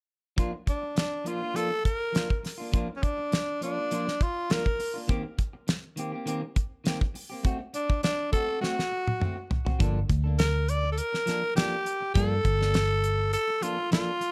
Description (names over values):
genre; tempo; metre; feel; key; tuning
straight-eighth soul blues; 102 BPM; 4/4; straight; G minor; A4 = 440 Hz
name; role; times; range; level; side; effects
clean electric guitar; stabs; 0.4-14.3 s; Eb3 to A4; -37 LUFS; equal; none
damped 70s drum kit; drums; 0.4-14.3 s; hi-hat, kick drum, snare drum, toms; -30 LUFS; equal; none
growling tenor saxophone; melody; 0.7-14.3 s; C#4 to D5; -31 LUFS; equal; none
vintage muted fingered electric bass; bass; 9.8-13.3 s; G1 to G2; -28 LUFS; equal; none
room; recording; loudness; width
light reverb; none; -28 LUFS; mono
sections
0.4-9.8 A section; 9.8-14.3 B section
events
drum fill 8.6-9.8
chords
0.4 Bb/F; 5.1 Cm7; 7.4 Am6; 9.8 Gm9